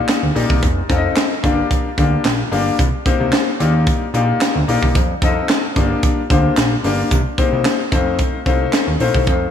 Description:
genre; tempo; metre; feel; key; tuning
early-eighties boogie funk; 111 BPM; 4/4; straight; unclear; A4 = 445 Hz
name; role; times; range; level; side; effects
clear grand piano; accompaniment; 0.0-9.5 s; A3 to Eb5; -19 LUFS; left 5 dB; slapback echo
tight funk drum kit; drums; 0.1-9.4 s; handclaps, hi-hat, kick drum, snare drum; -18 LUFS; right 1 dB; none
fat analog bass; bass; 0.2-9.5 s; F1 to F2; -19 LUFS; right 1 dB; none
room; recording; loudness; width
moderate lush hall reverb, RT60 2.3 s; big arena sound; -14 LUFS; side -8 dB against mid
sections
0.0-9.3 A section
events
none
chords
0.0 Ebmaj9; 0.6 F7; 1.4 Gm7; 2.8 Cm7; 3.6 Ebmaj9; 5.0 F7; 5.8 Gm7; 7.1 Cm7; 7.9 F7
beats
0.09 | 0.63 1.17 1.71 2.25 | 2.79 3.33 3.87 4.41 | 4.95 5.49 6.03 6.57 | 7.11 7.65 8.19 8.73 | 9.27

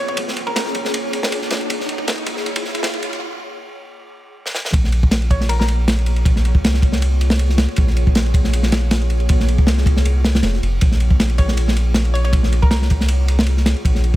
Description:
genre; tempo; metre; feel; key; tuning
drum and bass, jungle; 158 BPM; 4/4; swing 54% on 16ths; Bb minor; A4 = 442 Hz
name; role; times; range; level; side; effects
hollow square pluck; melody; 0.0-0.6, 5.3-5.7, 11.4-12.8 s; Bb4 to Db5; -28 LUFS; equal; chorus, dub echo
riser; sound effects; 0.0-3.2 s; none; -28 LUFS; right 3 dB; none
crunchy breakbeat drum kit; drums; 0.1-14.2 s; kick drum, ride cymbal, snare drum; -18 LUFS; equal; high-pass filter on kick, high-pass filter on cymbals, high-pass filter on snare, high-pass filter on room
soft dub sub bass; bass; 4.7-14.2 s; F1 to C2; -16 LUFS; equal; none
room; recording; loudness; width
small room reverb; high-pass filter; -15 LUFS; side -15 dB against mid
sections
0.0-4.7 A section; 4.7-14.2 B section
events
build-up 0.0-4.7; riser 0.0-3.2; filter sweep 0.0-4.7; break 3.2-4.7; drum fill 4.5; drop 4.7-14.2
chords
0.0 Bbm7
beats
| 0.18 0.56 0.94 1.32 | 1.70 2.08 2.46 2.84 | 3.22 3.60 3.98 4.36 | 4.74 5.12 5.50 5.88 | 6.25 6.63 7.01 7.39 | 7.77 8.15 8.53 8.91 | 9.29 9.67 10.05 10.43 | 10.81 11.19 11.57 11.95 | 12.33 12.71 13.09 13.47 | 13.85

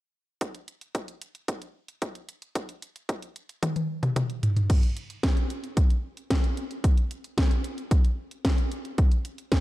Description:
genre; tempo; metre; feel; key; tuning
italo disco; 112 BPM; 4/4; straight; none; none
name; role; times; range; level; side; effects
electronic kick drum; drums; 0.4-9.6 s; none; -23 LUFS; equal; overdrive, high-pass filter on kick, high-pass filter on room
house drum kit; drums; 0.4-9.6 s; crash cymbal, hi-hat, snare drum, toms; -29 LUFS; equal; overdrive
room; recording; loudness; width
light reverb; dark, warm production; -25 LUFS; side -17 dB against mid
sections
0.4-4.7 A section; 4.7-9.6 B section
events
drum fill 3.6-4.7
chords
none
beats
| 0.41 0.95 1.48 2.02 | 2.55 3.09 3.63 4.16 | 4.70 5.23 5.77 6.30 | 6.84 7.38 7.91 8.45 | 8.98 9.52

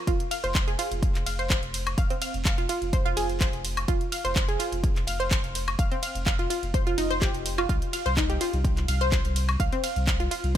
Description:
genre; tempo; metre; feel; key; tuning
progressive house; 126 BPM; 4/4; straight; F minor; A4 = 440 Hz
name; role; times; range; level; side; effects
analog pluck; arpeggios; 0.1-10.6 s; C4 to F6; -29 LUFS; equal; chorus, sidechain pumping, ping-pong delay
saturated sub bass; bass; 0.1-10.6 s; F1 to C2; -30 LUFS; equal; sidechain pumping
electronic kick drum; drums; 0.1-10.6 s; none; -26 LUFS; equal; studio reverb
pop drum kit; drums; 0.1-10.6 s; handclaps, hi-hat, ride cymbal, woodblock; -31 LUFS; equal; studio reverb
room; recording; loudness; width
little or no reverb; none; -24 LUFS; side -11 dB against mid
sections
0.0-10.6 A section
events
none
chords
0.1 F5; 7.7 N.C.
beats
| 0.07 0.55 1.03 1.50 | 1.98 2.46 2.93 3.41 | 3.88 4.36 4.84 5.31 | 5.79 6.26 6.74 7.22 | 7.69 8.17 8.64 9.12 | 9.60 10.07 10.55

